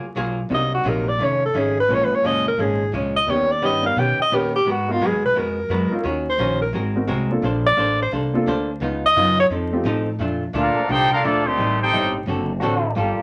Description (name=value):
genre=jazz, big band swing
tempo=173 BPM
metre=4/4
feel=swing 64% on 8ths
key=Bb major from 10.2 s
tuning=A4 = 439 Hz
part: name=archtop guitar, miked and amplified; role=accompaniment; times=0.0-13.2 s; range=F2 to B#4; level=-27 LUFS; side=equal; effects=none
part: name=warm baby grand piano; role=accompaniment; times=0.0-9.8 s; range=F#3 to Bb4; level=-28 LUFS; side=equal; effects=none
part: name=upright bass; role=bass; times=0.0-13.2 s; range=F1 to B2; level=-28 LUFS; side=equal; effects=none
part: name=mellow alto saxophone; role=melody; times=0.5-9.5 s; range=E#4 to G5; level=-21 LUFS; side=equal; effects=none
part: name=warm trumpet section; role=melody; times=10.6-12.1 s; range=A3 to G5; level=-22 LUFS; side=equal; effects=none
part: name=bright trombone section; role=second line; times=10.6-12.1 s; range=Eb3 to G4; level=-28 LUFS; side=equal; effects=none
part: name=muted trombone section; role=sustained chords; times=10.8-13.2 s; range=F3 to A4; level=-28 LUFS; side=equal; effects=none
room=wet studio ambience, RT60 0.5 s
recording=vinyl crackle, nothing above 10.3 kHz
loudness=-20 LUFS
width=mono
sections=0.0-10.2 A section; 10.2-13.2 B section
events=alto saxophone solo 0.0-10.2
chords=0.5 Cm7b5; 1.2 F7alt; 1.9 A#m7; 3.3 D#7b13; 4.7 G#m9; 6.0 D#m7; 6.7 G#9; 7.4 A#maj9; 8.8 C#9; 9.5 F7; 10.2 Bbmaj7; 11.6 Am7b5; 12.3 D7